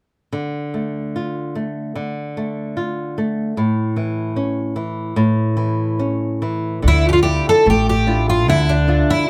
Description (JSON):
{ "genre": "fado-style ballad", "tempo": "74 BPM", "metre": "2/4", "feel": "rubato", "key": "D harmonic minor", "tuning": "A4 = 440 Hz", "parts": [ { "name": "flamenco guitar", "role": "accompaniment", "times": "0.3-9.3 s", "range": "A2 to E5", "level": "-22 LUFS", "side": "equal", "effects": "none" }, { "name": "upright bass", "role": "bass", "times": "6.8-9.0 s", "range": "A1 to D2", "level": "-19 LUFS", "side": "equal", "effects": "none" }, { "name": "fingerpicked twelve-string acoustic guitar", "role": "melody", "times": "6.9-9.3 s", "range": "D4 to A4", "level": "-18 LUFS", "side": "equal", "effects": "none" } ], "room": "light reverb", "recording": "none", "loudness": "-19 LUFS", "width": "mono", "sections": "0.3-6.8 A section; 6.8-9.3 B section", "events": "none", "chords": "0.3 Dm; 3.6 A; 6.8 Dmadd9" }